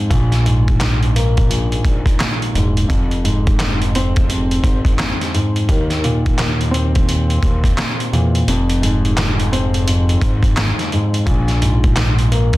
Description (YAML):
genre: hip hop, boom-bap hip-hop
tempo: 86 BPM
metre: 4/4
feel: swing 62% on 16ths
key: F minor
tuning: A4 = 440 Hz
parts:
  - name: dark grand piano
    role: accompaniment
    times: 0.0-12.6 s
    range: Bb1 to C4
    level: -18 LUFS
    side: equal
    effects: cassette tape
  - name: fat analog bass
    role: bass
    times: 0.1-12.6 s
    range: E1 to E2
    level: -18 LUFS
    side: equal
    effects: none
  - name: trip hop sampler-style drum kit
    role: drums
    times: 0.1-12.6 s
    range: handclaps, hi-hat, kick drum, snare drum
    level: -18 LUFS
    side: equal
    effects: none
room: light reverb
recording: dense, heavily limited modern master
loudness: -14 LUFS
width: side -18 dB against mid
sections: 0.0-12.6 A section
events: kick muted 8.5-9.9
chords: 0.1 Absus2; 2.9 Fm; 5.7 Cm7/Eb; 8.5 Fm; 11.3 Absus2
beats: | 0.10 0.80 1.50 2.20 | 2.89 3.59 4.29 4.99 | 5.68 6.38 7.08 7.78 | 8.48 9.17 9.87 10.57 | 11.27 11.96